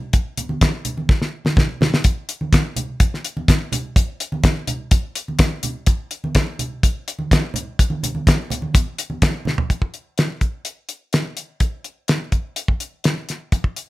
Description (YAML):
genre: rock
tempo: 126 BPM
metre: 4/4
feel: straight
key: none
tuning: none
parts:
  - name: damped 70s drum kit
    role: drums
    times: 0.1-13.9 s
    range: hi-hat, kick drum, snare drum, toms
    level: -16 LUFS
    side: equal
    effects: none
  - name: congas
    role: percussion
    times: 0.4-9.6 s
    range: none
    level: -27 LUFS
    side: right 2 dB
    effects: none
room: light reverb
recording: none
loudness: -18 LUFS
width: side -18 dB against mid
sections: 0.0-9.7 A section; 9.7-13.9 B section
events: drum fill 1.1-2.1, 9.5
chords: none